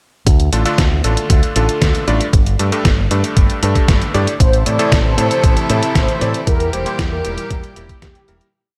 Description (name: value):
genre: italo disco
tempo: 116 BPM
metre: 4/4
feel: straight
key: D minor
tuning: A4 = 440 Hz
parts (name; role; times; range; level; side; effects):
- fingered electric bass with an envelope filter; bass; 0.3-8.4 s; E1 to A2; -20 LUFS; equal; none
- detuned 8-bit digital drum machine; drums; 0.3-8.5 s; hi-hat, snare drum; -23 LUFS; equal; none
- electronic kick drum; drums; 0.3-8.1 s; none; -17 LUFS; equal; none
- bright electric grand piano; stabs; 0.5-8.5 s; G2 to D5; -23 LUFS; equal; delay
- mellow synth brass; melody; 4.4-8.5 s; G4 to D5; -24 LUFS; equal; chorus, delay
- rich chamber string section; sustained chords; 4.4-8.5 s; Bb2 to A4; -25 LUFS; equal; none
room: light reverb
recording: none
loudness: -15 LUFS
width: mono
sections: 0.3-8.5 verse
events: fade-out 5.8-8.5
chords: 0.3 Dm; 2.3 Gsus2; 4.4 Am; 6.5 Edim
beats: | 0.27 0.78 1.30 1.82 | 2.33 2.85 3.37 3.88 | 4.40 4.92 5.44 5.95 | 6.47 6.99 7.51 8.02